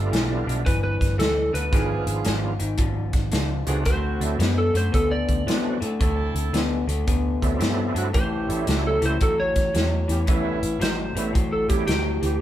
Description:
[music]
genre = electric blues shuffle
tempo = 112 BPM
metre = 4/4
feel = swing 65% on 8ths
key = unclear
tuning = A4 = 439 Hz
[part]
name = overdriven tonewheel organ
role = accompaniment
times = 0.0-11.9 s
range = E#3 to F#4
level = -31 LUFS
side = right 5 dB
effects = slow rotary speaker, chorus vibrato
[part]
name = electric guitar through a small old amp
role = riff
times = 0.0-12.4 s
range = G2 to B3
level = -28 LUFS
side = left 4 dB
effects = none
[part]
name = warm horn section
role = stabs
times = 0.0-12.3 s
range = A3 to A4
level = -33 LUFS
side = right 4 dB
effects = none
[part]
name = vintage muted fingered electric bass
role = bass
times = 0.0-12.4 s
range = G1 to A2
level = -26 LUFS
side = equal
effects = none
[part]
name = natural country drum kit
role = drums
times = 0.1-12.3 s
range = hi-hat, kick drum, snare drum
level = -25 LUFS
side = equal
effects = none
[part]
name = electric slide guitar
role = melody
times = 0.7-12.4 s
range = G4 to D5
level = -26 LUFS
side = equal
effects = none
[sound]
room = light reverb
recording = band playing live in one room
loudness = -20 LUFS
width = side -12 dB against mid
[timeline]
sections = 0.0-12.4 A section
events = none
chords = 0.0 G9; 1.7 G#dim7; 3.9 D9; 8.1 A9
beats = 0.12 0.66 1.19 | 1.73 2.26 2.79 3.33 | 3.86 4.40 4.93 5.47 | 6.00 6.54 7.07 7.60 | 8.14 8.67 9.21 9.74 | 10.28 10.81 11.35 11.88

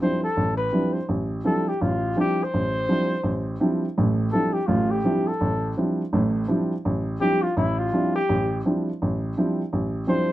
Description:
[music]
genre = jazz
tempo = 167 BPM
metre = 4/4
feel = swing 63% on 8ths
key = D minor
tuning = A4 = 440 Hz
[part]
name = dark trumpet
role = melody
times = 0.0-10.3 s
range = E4 to C5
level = -25 LUFS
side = left 2 dB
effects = none
[part]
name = warm baby grand piano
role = accompaniment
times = 0.0-10.3 s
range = A1 to E4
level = -22 LUFS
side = right 1 dB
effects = none
[sound]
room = moderate studio reverb, RT60 0.5 s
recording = rough home demo mix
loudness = -21 LUFS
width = side -15 dB against mid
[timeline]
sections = 0.0-10.3 A section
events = none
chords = 0.0 Dm11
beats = 0.00 0.36 0.72 | 1.08 1.44 1.80 2.16 | 2.52 2.88 3.24 3.60 | 3.96 4.32 4.68 5.04 | 5.40 5.76 6.12 6.48 | 6.84 7.20 7.56 7.92 | 8.28 8.64 9.00 9.36 | 9.72 10.07

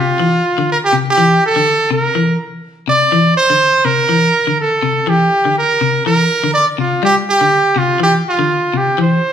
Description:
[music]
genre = afrobeat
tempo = 123 BPM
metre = 4/4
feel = swing 56% on 16ths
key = C mixolydian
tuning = A4 = 444 Hz
[part]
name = brilliant trumpet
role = melody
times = 0.0-9.3 s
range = F4 to D5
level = -12 LUFS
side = right 2 dB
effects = none
[part]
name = electric guitar at the edge of break-up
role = arpeggios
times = 0.0-9.2 s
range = C3 to G3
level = -17 LUFS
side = left 3 dB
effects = none
[sound]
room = wet large studio reverb, RT60 1.3 s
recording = band playing live in one room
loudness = -11 LUFS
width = side -9 dB against mid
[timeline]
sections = 0.0-9.3 A section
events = none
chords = 0.0 C7sus2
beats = 0.20 0.69 | 1.18 1.66 2.15 2.64 | 3.13 3.61 4.10 4.59 | 5.08 5.57 6.05 6.54 | 7.03 7.52 8.01 8.49 | 8.98

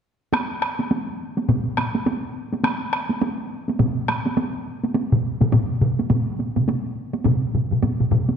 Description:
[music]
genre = japanese traditional, taiko drum ensemble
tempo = 104 BPM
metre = 4/4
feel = swing 60% on 16ths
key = none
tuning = none
[part]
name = solo taiko drums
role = percussion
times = 0.3-8.3 s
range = none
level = -23 LUFS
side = left 5 dB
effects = none
[part]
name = solo taiko drums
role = percussion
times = 0.3-8.3 s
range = none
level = -25 LUFS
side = right 6 dB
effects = none
[part]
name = taiko ensemble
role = percussion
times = 0.3-8.4 s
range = none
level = -24 LUFS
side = right 2 dB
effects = none
[sound]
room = wet concert hall reverb, RT60 1.9 s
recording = dark, warm production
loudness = -20 LUFS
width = side -7 dB against mid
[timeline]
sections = 0.3-8.4 A section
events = none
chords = none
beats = | 0.33 0.91 1.48 2.06 | 2.64 3.21 3.79 4.37 | 4.94 5.52 6.09 6.67 | 7.25 7.82

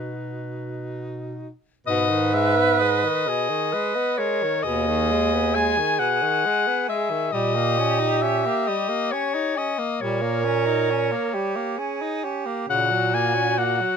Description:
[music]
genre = classical, lyrical piece for single-reed quartet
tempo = 44 BPM (dotted quarters)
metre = 12/8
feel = rubato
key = G# minor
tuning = A4 = 441 Hz
[part]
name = bright clarinet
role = melody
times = 0.0-14.0 s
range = B4 to G#5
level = -24 LUFS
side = left 7 dB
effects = none
[part]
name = clear alto saxophone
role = second line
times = 0.0-14.0 s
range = F#4 to B4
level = -26 LUFS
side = right 8 dB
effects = none
[part]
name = clear tenor saxophone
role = accompaniment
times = 0.0-14.0 s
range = B2 to D#4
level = -28 LUFS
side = left 2 dB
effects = none
[part]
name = warm bass clarinet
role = bass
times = 0.0-13.8 s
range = D#2 to B2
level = -26 LUFS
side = right 3 dB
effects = none
[sound]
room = little or no reverb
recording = close, detailed microphones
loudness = -20 LUFS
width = side -6 dB against mid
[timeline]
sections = 0.0-1.9 A section; 1.9-14.0 B section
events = none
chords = 0.0 B; 1.9 G#m; 7.3 D#7/A#; 12.7 F#/A#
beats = 0.37 | 1.86 3.27 4.64 6.00 | 7.34 8.68 10.02 11.34 | 12.69

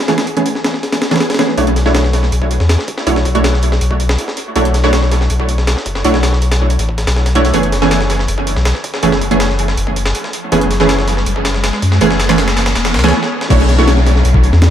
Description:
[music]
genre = drum and bass, jungle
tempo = 161 BPM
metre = 4/4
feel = straight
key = B minor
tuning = A4 = 442 Hz
[part]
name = orchestra-hit-like synth stab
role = stabs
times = 0.0-14.7 s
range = E3 to C#5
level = -16 LUFS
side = right 2 dB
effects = built-in reverb, dub echo
[part]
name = breakbeat sampler-style drum kit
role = drums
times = 0.1-14.7 s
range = crash cymbal, hi-hat, kick drum, snare drum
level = -18 LUFS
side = equal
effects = high-pass filter on hats, high-pass filter on snare, high-pass filter on kick, high-pass filter on cymbals, dub echo
[part]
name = saturated sub bass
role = bass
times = 1.6-14.7 s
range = E1 to F#2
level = -14 LUFS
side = left 1 dB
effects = none
[part]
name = riser and downlifter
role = sound effects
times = 9.8-14.7 s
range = none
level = -23 LUFS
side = left 1 dB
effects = none
[sound]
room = moderate spring reverb, RT60 1.9 s, digital ambience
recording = echo-heavy mix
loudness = -11 LUFS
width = side -10 dB against mid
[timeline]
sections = 0.0-1.6 A section; 1.6-13.5 B section; 13.5-14.7 C section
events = build-up 1.6-13.5; riser 9.8-13.1; drum fill 13.1-13.5; stop 13.1-13.5; drop 13.5-14.7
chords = 0.0 Amaj9/E; 1.6 Bm11; 7.5 F#m11; 13.5 Bm11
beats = | 0.09 0.46 0.83 1.20 | 1.58 1.95 2.32 2.69 | 3.07 3.44 3.81 4.18 | 4.56 4.93 5.30 5.68 | 6.05 6.42 6.79 7.17 | 7.54 7.91 8.28 8.66 | 9.03 9.40 9.78 10.15 | 10.52 10.89 11.27 11.64 | 12.01 12.38 12.76 13.13 | 13.50 13.87 14.25 14.62

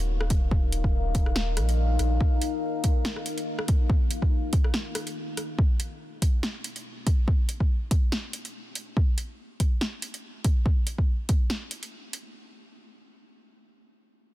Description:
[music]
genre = deep dubstep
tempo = 142 BPM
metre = 4/4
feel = swing 55% on 16ths, half-time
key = unclear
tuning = A4 = 440 Hz
[part]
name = deep dark ambient pad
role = sustained chords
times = 0.0-8.9 s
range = B3 to F5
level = -33 LUFS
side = left 4 dB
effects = chorus, built-in reverb
[part]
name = soft dub sub bass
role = bass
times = 0.0-2.2 s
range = Eb1 to Bb1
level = -26 LUFS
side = equal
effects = none
[part]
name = deep house drum kit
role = drums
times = 0.0-12.2 s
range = hi-hat, rim click, snare drum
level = -33 LUFS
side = equal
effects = overdrive
[part]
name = electronic kick drum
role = drums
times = 0.3-11.4 s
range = none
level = -23 LUFS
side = equal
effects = overdrive
[sound]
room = digital ambience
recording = dense, heavily limited modern master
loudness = -23 LUFS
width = side -16 dB against mid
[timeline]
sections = 0.0-12.3 A section; 12.3-14.3 B section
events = none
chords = 0.0 Eb5; 5.6 B5; 12.3 N.C.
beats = 0.09 | 0.51 0.94 1.36 1.78 | 2.20 2.63 3.05 3.47 | 3.89 4.32 4.74 5.16 | 5.58 6.01 6.43 6.85 | 7.27 7.70 8.12 8.54 | 8.96 9.39 9.81 10.23 | 10.65 11.08 11.50 11.92

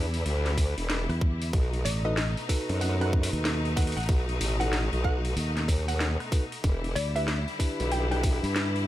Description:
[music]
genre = glitch hop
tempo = 94 BPM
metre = 4/4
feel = swing 63% on 16ths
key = unclear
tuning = A4 = 440 Hz
[part]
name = clear studio string section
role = sustained chords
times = 0.0-8.9 s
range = B2 to E4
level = -36 LUFS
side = left 3 dB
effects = sidechain pumping
[part]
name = mellow tine electric piano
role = stabs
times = 0.0-8.8 s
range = D4 to B4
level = -35 LUFS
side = equal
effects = sidechain pumping, digital delay
[part]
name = formant-sweep wobble bass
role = bass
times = 0.0-8.4 s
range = E1 to F#2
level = -28 LUFS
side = equal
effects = chorus
[part]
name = drum and bass drum kit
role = drums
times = 0.1-8.9 s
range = hi-hat, rim click, snare drum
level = -34 LUFS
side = equal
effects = none
[part]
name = electronic kick drum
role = drums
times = 0.6-8.4 s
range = none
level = -25 LUFS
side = equal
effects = none
[part]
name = fingered electric bass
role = bass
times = 1.1-8.9 s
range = A1 to G2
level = -29 LUFS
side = equal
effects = tube saturation
[part]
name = woody wave-folded pluck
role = melody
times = 1.8-8.2 s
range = D5 to G5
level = -36 LUFS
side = equal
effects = analog chorus, vintage 12-bit sampler grit, digital delay
[sound]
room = little or no reverb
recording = none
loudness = -25 LUFS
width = side -14 dB against mid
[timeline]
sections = 0.0-8.9 A section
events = none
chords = 0.0 Em7; 1.5 B7; 6.6 Em7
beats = 0.26 0.89 | 1.53 2.17 2.81 3.45 | 4.09 4.72 5.36 6.00 | 6.64 7.28 7.92 8.55

